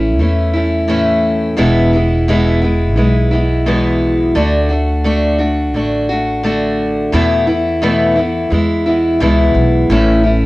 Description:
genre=acoustic folk duo or small band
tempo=86 BPM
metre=4/4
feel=straight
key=unclear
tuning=A4 = 440 Hz
part: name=picked steel-string acoustic guitar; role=accompaniment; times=0.0-10.5 s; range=E2 to F#4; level=-13 LUFS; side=equal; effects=none
part: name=upright bass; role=bass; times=0.0-10.5 s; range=E1 to E2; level=-16 LUFS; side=equal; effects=none
room=light reverb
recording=home recording on cassette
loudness=-11 LUFS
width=side -19 dB against mid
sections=0.0-9.9 A section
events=none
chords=0.0 A; 1.6 E; 4.4 D; 7.1 Esus4; 8.5 E; 9.9 A

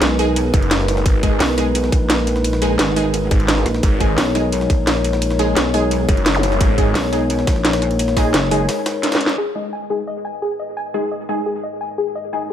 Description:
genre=dark technical drum and bass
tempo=173 BPM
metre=4/4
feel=straight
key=G# minor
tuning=A4 = 440 Hz
part: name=dark analog pad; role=sustained chords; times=0.0-12.5 s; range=G#3 to C#5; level=-23 LUFS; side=left 3 dB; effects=chorus, sidechain pumping
part: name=pulsing pluck wobble bass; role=bass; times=0.0-8.7 s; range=F#1 to B1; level=-20 LUFS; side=equal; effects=chorus
part: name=drum and bass drum kit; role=drums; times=0.0-9.3 s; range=hi-hat, snare drum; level=-19 LUFS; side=equal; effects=low-pass filter on hats, low-pass filter on snare, low-pass filter on toms, low-pass filter on cymbals, low-pass filter on room
part: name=jungle sampler-style drum kit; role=drums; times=0.0-9.4 s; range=hi-hat, ride cymbal, snare drum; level=-29 LUFS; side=equal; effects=high-pass filter on cymbals, high-pass filter on snare, high-pass filter on hats
part: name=orchestra-hit-like synth stab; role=stabs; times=0.2-12.5 s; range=G#3 to G#4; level=-24 LUFS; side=right 2 dB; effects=built-in reverb, dub echo
part: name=snarling distorted saw bass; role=bass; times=0.5-6.9 s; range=F#1 to G#1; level=-19 LUFS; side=equal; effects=distortion, overdrive
part: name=electronic kick drum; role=drums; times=0.5-8.2 s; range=none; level=-16 LUFS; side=equal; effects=none
part: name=zap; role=sound effects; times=6.3-6.4 s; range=none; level=-25 LUFS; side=left 1 dB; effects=none
part: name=soft round pluck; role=arpeggios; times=9.4-12.5 s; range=G#4 to G#5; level=-22 LUFS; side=left 3 dB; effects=lush chorus, sidechain pumping, dub echo
room=light reverb, digital ambience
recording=none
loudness=-15 LUFS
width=side -10 dB against mid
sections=0.0-9.4 A section; 9.4-12.5 B section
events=drop 0.0-9.4; break 8.7-9.4; drum fill 9.0-9.4; band accent 9.3; filter sweep on analog synth pad 9.4-12.5; filter sweep on synth stab 9.4-12.5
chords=0.0 G#madd9

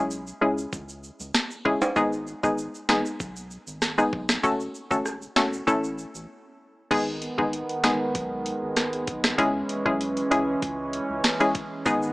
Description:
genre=dancehall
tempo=97 BPM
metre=4/4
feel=straight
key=G# phrygian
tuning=A4 = 440 Hz
part: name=hollow square pluck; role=accompaniment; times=0.0-12.0 s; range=G#3 to A4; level=-24 LUFS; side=left 1 dB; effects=chorus
part: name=round analog bass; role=bass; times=0.0-12.1 s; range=E1 to C#2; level=-41 LUFS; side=equal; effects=none
part: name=egg shaker and timbales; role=percussion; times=0.1-6.3, 11.9-12.1 s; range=none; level=-33 LUFS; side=right 2 dB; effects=none
part: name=island pop drum kit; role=drums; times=0.7-12.0 s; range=crash cymbal, hi-hat, kick drum, rim click, snare drum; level=-26 LUFS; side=equal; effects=overdrive
part: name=warm analog pad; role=sustained chords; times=6.9-12.1 s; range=D#3 to C#4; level=-28 LUFS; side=right 1 dB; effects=chorus, sidechain pumping
room=light reverb, digital ambience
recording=small speaker sound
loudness=-23 LUFS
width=side -21 dB against mid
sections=0.0-6.9 A section; 6.9-12.1 B section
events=break 6.3-6.9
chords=0.0 C#m; 2.0 G#m; 4.4 F#m; 5.7 A; 6.9 G#m; 9.4 C#m

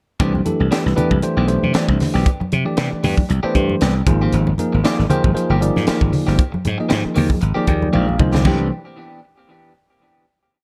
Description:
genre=electric jazz fusion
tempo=116 BPM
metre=4/4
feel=swing 55% on 16ths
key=unclear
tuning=A4 = 440 Hz
part: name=bell-like tine electric piano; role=accompaniment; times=0.2-8.7 s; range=E3 to G5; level=-23 LUFS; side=equal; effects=phaser
part: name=clean electric guitar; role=stabs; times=0.2-8.7 s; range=Eb3 to G4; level=-28 LUFS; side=equal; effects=lush chorus, tape echo
part: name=slap bass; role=bass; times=0.2-8.7 s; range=G1 to C3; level=-21 LUFS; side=equal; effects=none
part: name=crisp fusion drum kit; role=drums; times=0.2-8.6 s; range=crash cymbal, hi-hat, kick drum, snare drum, toms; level=-23 LUFS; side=equal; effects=none
part: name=congas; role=percussion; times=0.4-8.7 s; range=none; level=-25 LUFS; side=equal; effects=none
room=light reverb, small room ambience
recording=dark, warm production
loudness=-17 LUFS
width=mono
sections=0.2-8.5 groove; 8.5-10.5 final chord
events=tine electric piano fill 7.4-8.5; drum fill 7.9-8.5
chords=0.2 Cmaj9; 4.1 Abmaj9; 8.5 Cmaj9

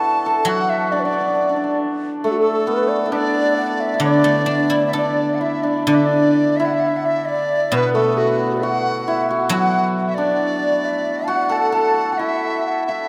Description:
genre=chinese traditional, Chinese chamber ensemble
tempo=67 BPM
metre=2/4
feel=rubato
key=D gong mode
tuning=A4 = 440 Hz
part: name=breathy mellow xiao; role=melody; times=0.0-13.1 s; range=F#4 to A5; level=-24 LUFS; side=equal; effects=none
part: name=bright reedy large dizi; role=second line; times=0.0-13.1 s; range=F#4 to A5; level=-27 LUFS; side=equal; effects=none
part: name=hammered dulcimer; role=second line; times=0.0-13.1 s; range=A3 to B4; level=-23 LUFS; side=equal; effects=none
part: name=guzheng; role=accompaniment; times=0.4-12.2 s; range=B2 to A4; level=-25 LUFS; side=equal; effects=none
room=wet cathedral reverb, RT60 4.9 s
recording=in a vast, echoing space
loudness=-19 LUFS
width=mono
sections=0.0-5.9 A section; 5.9-13.1 B section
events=none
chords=none

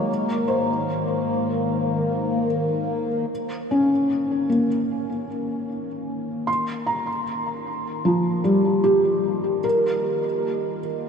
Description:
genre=ambient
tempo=76 BPM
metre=4/4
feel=straight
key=unclear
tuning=A4 = 440 Hz
part: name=felt-muted upright piano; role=arpeggios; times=0.0-11.1 s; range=F3 to C6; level=-22 LUFS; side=equal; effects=ping-pong delay
part: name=warm sub bass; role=bass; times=0.0-3.3 s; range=Ab2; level=-40 LUFS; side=equal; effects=none
part: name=overtone-sweeping drone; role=drone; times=0.0-11.1 s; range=Eb3 to Bb3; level=-27 LUFS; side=left 1 dB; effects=chorus, built-in reverb, phaser
room=wet huge ambient reverb, RT60 8.8 s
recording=none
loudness=-21 LUFS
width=side -6 dB against mid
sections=0.0-3.3 A section; 3.3-11.1 B section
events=fade-in on synth drone 3.3-11.1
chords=0.1 Abadd9; 3.3 Eb5; 6.5 Gm7; 9.6 Eb

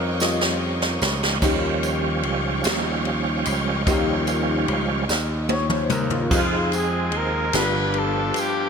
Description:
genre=slow gospel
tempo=49 BPM (dotted quarters)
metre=6/8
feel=straight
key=unclear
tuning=A4 = 439 Hz
part: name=clear baby grand piano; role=accompaniment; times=0.0-8.7 s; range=G2 to Eb5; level=-27 LUFS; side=left 3 dB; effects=ensemble chorus
part: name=bright studio string section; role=sustained chords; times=0.0-6.3 s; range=Eb5 to Db6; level=-33 LUFS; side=equal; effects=none
part: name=bright tonewheel organ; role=sustained chords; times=0.0-8.7 s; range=F3 to Ab4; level=-27 LUFS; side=right 4 dB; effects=slow rotary speaker, overdrive, chorus vibrato
part: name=gritty slap bass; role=bass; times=0.0-8.3 s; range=G1 to F2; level=-26 LUFS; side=equal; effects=overdrive
part: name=jazz brush drum kit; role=drums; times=0.2-8.5 s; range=crash cymbal, kick drum, ride cymbal, snare drum, toms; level=-26 LUFS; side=equal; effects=gated reverb
part: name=tambourine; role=percussion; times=0.2-8.7 s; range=none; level=-34 LUFS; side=right 8 dB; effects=none
part: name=clear horn section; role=melody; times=6.3-8.7 s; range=Ab3 to B4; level=-24 LUFS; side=equal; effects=none
room=light reverb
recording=bright 1980s-style digital production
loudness=-20 LUFS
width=side -6 dB against mid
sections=0.0-1.4 A section; 1.4-6.3 B section; 6.3-8.7 C section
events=grand piano solo 0.0-1.4; drum fill 0.2-1.4, 5.1-6.3; tonewheel organ solo 1.4-6.3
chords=0.0 Eb9; 6.3 Fm7; 7.5 G7

